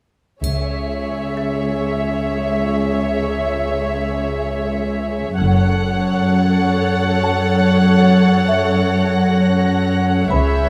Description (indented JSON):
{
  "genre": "cinematic, suspense film score",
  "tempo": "97 BPM",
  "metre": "4/4",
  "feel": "straight",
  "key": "C# minor",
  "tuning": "A4 = 441 Hz",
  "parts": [
    { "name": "muted symphonic violin section", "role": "melody", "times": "0.4-10.7 s", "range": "E5 to F#5", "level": "-25 LUFS", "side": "equal", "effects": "none" },
    { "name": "muted symphonic violin section", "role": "second line", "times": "0.4-10.7 s", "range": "G#4 to C#5", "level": "-25 LUFS", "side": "equal", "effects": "none" },
    { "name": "muted symphonic cello section", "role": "bass", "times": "0.4-10.7 s", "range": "C#2 to F#2", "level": "-20 LUFS", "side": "equal", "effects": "none" },
    { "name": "muted symphonic double bass section", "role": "bass", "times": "0.4-1.0, 5.4-6.0, 10.3-10.7 s", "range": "F#1 to C#2", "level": "-22 LUFS", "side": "equal", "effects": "none" },
    { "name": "triangle", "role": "percussion", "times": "0.4-1.6 s", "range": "none", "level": "-36 LUFS", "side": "equal", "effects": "none" },
    { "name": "music box", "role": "texture", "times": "1.4-10.7 s", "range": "A4 to A6", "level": "-27 LUFS", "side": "equal", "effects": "none" },
    { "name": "muted symphonic violin section", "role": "texture", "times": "5.4-10.7 s", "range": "E6 to C#7", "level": "-32 LUFS", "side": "equal", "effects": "none" }
  ],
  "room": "light reverb",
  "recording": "close, detailed microphones",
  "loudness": "-17 LUFS",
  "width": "mono",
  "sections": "0.4-10.7 A section",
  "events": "none",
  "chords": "0.4 C#m; 5.4 F#m"
}